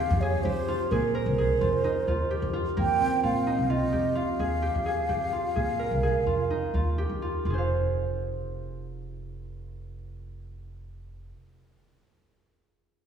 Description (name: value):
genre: contemporary instrumental, chamber music in an uneven meter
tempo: 129 BPM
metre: 5/4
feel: straight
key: F minor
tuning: A4 = 440 Hz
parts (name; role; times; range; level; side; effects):
- mellow hollow concert flute; melody; 0.0-7.0 s; Bb4 to G5; -29 LUFS; right 1 dB; none
- concert harp; arpeggios; 0.0-11.4 s; Bb3 to F5; -29 LUFS; right 2 dB; none
- upright bass; bass; 0.0-11.3 s; F1 to Bb2; -30 LUFS; right 1 dB; none
room: wet concert hall reverb, RT60 2.1 s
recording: heard from further back in the room, small room ambience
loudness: -24 LUFS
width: side -8 dB against mid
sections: 0.0-7.5 A section; 7.5-9.8 B section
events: slowing down 3.7-7.5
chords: 0.0 Fmadd9; 7.5 Fm